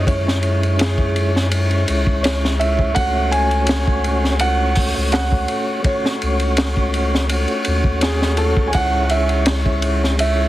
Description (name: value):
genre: trip hop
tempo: 83 BPM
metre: 4/4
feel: swing 53% on 16ths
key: unclear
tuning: A4 = 440 Hz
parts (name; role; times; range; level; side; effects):
- felt-muted upright piano; melody; 0.0-10.5 s; G#4 to G#5; -23 LUFS; right 2 dB; vintage 12-bit sampler grit, tape echo
- mellow tonewheel organ; accompaniment; 0.0-10.5 s; G#3 to C#5; -22 LUFS; equal; overdrive, fast rotary speaker, tremolo, low-pass filter, tape echo
- warm sub bass; bass; 0.0-10.5 s; C#2 to F#2; -19 LUFS; equal; none
- crunchy breakbeat drum kit; drums; 0.1-10.4 s; hi-hat, kick drum, ride cymbal, snare drum; -20 LUFS; equal; none
room: small room reverb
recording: heavily compressed radio sound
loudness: -15 LUFS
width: side -15 dB against mid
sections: 0.0-10.5 A section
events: filter sweep on tonewheel organ 0.0-10.5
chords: 0.0 C#m; 3.0 F#m/C#; 8.7 C#m